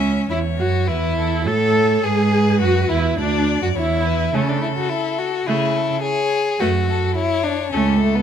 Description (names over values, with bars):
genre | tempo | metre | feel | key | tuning
quick classical-period movement for string quartet | 105 BPM | 4/4 | rubato | A major | A4 = 440 Hz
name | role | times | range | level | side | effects
clear violin | melody | 0.0-8.2 s | G#4 to E5 | -27 LUFS | left 11 dB | none
warm violin | second line | 0.0-8.2 s | A3 to A4 | -21 LUFS | left 4 dB | none
rich viola | accompaniment | 0.0-8.0 s | A3 to A4 | -24 LUFS | right 4 dB | none
rich cello | bass | 0.0-8.2 s | C#2 to C#3 | -20 LUFS | right 4 dB | none
room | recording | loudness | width
light reverb | close, detailed microphones | -17 LUFS | side -8 dB against mid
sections
0.0-8.2 A section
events
none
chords
0.0 A/C#; 2.0 E7; 4.3 A/C#; 6.6 F#m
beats
0.30 0.89 1.46 | 2.04 2.61 3.19 3.76 | 4.34 4.90 5.47 6.04 | 6.60 7.16 7.73